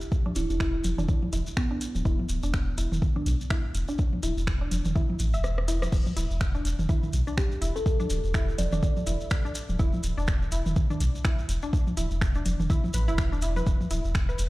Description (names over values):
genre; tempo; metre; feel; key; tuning
minimal techno; 124 BPM; 4/4; swing 58% on 16ths; unclear; A4 = 440 Hz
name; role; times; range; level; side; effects
shekere; percussion; 0.0-14.5 s; none; -41 LUFS; left 1 dB; none
electronic kick drum; drums; 0.1-14.3 s; none; -25 LUFS; equal; overdrive, studio ambience
resonant blip pluck; riff; 0.3-14.4 s; D4 to E5; -36 LUFS; left 1 dB; chorus, sidechain pumping, tape echo
electronic toms; percussion; 0.3-13.9 s; none; -34 LUFS; equal; studio ambience, tape echo
kalimba; melody; 0.4-2.1, 7.4-8.8 s; B3 to D5; -35 LUFS; right 1 dB; vintage 12-bit sampler grit, tape echo
punchy sub bass; bass; 0.4-14.5 s; D1 to B1; -28 LUFS; equal; tube saturation, sidechain pumping
garage drum kit; drums; 0.4-14.5 s; crash cymbal, finger snaps, hi-hat, rim click; -36 LUFS; right 1 dB; studio ambience
room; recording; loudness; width
little or no reverb; played on a big sound system in a bare room, large studio reverb; -24 LUFS; side -19 dB against mid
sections
0.0-5.9 A section; 5.9-14.5 B section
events
kick drops out 5.4-5.9; drum fill 5.4-5.9; drop 5.9-14.5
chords
0.0 E5